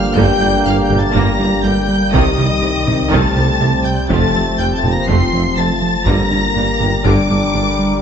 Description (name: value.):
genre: cinematic, hybrid orchestral and electronic film score.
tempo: 122 BPM.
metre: 4/4.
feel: straight.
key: G minor.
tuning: A4 = 440 Hz.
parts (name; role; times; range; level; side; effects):
rich studio violin section; melody; 0.0-8.0 s; Eb6 to D7; -22 LUFS; left 1 dB; none.
warm symphonic violin section; second line; 0.0-8.0 s; Eb5 to D6; -22 LUFS; left 4 dB; none.
analog drone; sustained chords; 0.0-8.0 s; G3 to D5; -24 LUFS; equal; chorus.
mellow French horn section; sustained chords; 0.0-8.0 s; Eb3 to D4; -22 LUFS; left 4 dB; none.
warm trombone section; sustained chords; 0.0-8.0 s; C3 to Bb3; -24 LUFS; right 3 dB; none.
round analog bass; riff; 0.0-7.9 s; C2 to G3; -20 LUFS; right 2 dB; none.
punchy sub bass; bass; 0.0-8.0 s; F1 to C2; -24 LUFS; left 1 dB; none.
rich symphonic viola section; accompaniment; 0.2-7.6 s; D3 to G4; -24 LUFS; equal; none.
glassy wavetable pluck; arpeggios; 0.2-7.7 s; C3 to G4; -26 LUFS; left 1 dB; none.
rich symphonic cello section; bass; 0.2-7.6 s; F2 to C3; -24 LUFS; right 2 dB; none.
rich symphonic double bass section; bass; 0.2-7.6 s; F1 to C2; -24 LUFS; right 2 dB; none.
warm tuba; bass; 0.2-7.6 s; F1 to C2; -25 LUFS; right 4 dB; none.
taiko ensemble; drums; 0.2-7.5 s; none; -24 LUFS; equal; none.
room: wet recital hall reverb, RT60 1.4 s.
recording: nothing above 8.0 kHz.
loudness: -12 LUFS.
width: side -8 dB against mid.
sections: 0.0-8.0 A section.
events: none.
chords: 0.0 Gm; 2.1 Cm; 4.1 F; 6.1 Gm.